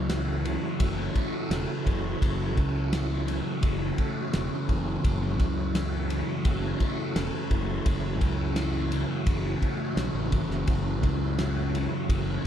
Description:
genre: psychedelic rock.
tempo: 85 BPM.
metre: 4/4.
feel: straight.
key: F# minor.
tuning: A4 = 439 Hz.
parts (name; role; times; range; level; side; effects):
tonewheel organ; sustained chords; 0.0-12.5 s; A3 to F#4; -36 LUFS; right 5 dB; chorus vibrato, fast rotary speaker.
fuzz guitar; riff; 0.0-12.5 s; F#2 to A3; -30 LUFS; left 1 dB; distortion, phaser.
fuzz fingered electric bass; bass; 0.0-12.4 s; E1 to C#2; -31 LUFS; equal; overdrive.
cloth-damped thuddy drum kit; drums; 0.1-12.5 s; kick drum, ride cymbal, snare drum; -30 LUFS; equal; none.
room: light reverb, studio reverb.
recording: none.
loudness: -25 LUFS.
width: side -9 dB against mid.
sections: 0.0-12.5 A section.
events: none.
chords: 0.0 F#m7.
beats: 0.10 0.80 1.51 | 2.22 2.92 3.63 4.33 | 5.04 5.75 6.45 7.16 | 7.86 8.57 9.27 9.98 | 10.68 11.39 12.10.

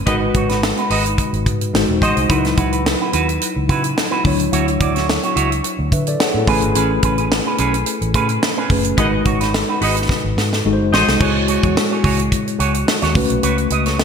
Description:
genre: polished 1980s jazz-funk pop.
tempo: 108 BPM.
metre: 4/4.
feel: swing 54% on 16ths.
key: unclear.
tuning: A4 = 440 Hz.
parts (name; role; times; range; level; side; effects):
tine electric piano; accompaniment; 0.0-14.0 s; F#3 to G#5; -20 LUFS; left 2 dB; fast stereo tremolo, wide subtle chorus.
vintage muted fingered electric bass; bass; 0.0-14.0 s; E1 to D3; -21 LUFS; equal; none.
warm horn section; second line; 0.1-2.2, 9.0-11.1 s; G#4 to D#5; -24 LUFS; left 2 dB; none.
electric guitar with an envelope filter; riff; 0.1-14.0 s; C#4 to D#5; -22 LUFS; right 4 dB; lush chorus.
tight funk drum kit; drums; 0.1-14.0 s; crash cymbal, hi-hat, kick drum, snare drum; -20 LUFS; equal; gated reverb.
room: moderate lush hall reverb, RT60 2.2 s.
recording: bright 1980s-style digital production.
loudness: -14 LUFS.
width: side -6 dB against mid.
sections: 0.0-11.2 A section; 11.2-14.0 B section.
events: band accent 0.1-2.3, 9.0-11.2; tine electric piano fill 5.9-6.8; drum fill 10.1-11.2.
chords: 0.1 G#m7; 1.7 G#7; 2.3 C#m11; 4.2 Dmaj9; 6.5 Amaj9; 9.0 G#m7; 10.6 G#7; 11.2 E69/C#; 13.2 A69.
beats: | 0.07 0.63 1.19 1.74 | 2.30 2.86 3.41 3.97 | 4.53 5.08 5.64 6.20 | 6.75 7.31 7.87 8.42 | 8.98 9.54 10.09 10.65 | 11.21 11.76 12.32 12.88 | 13.43 13.99.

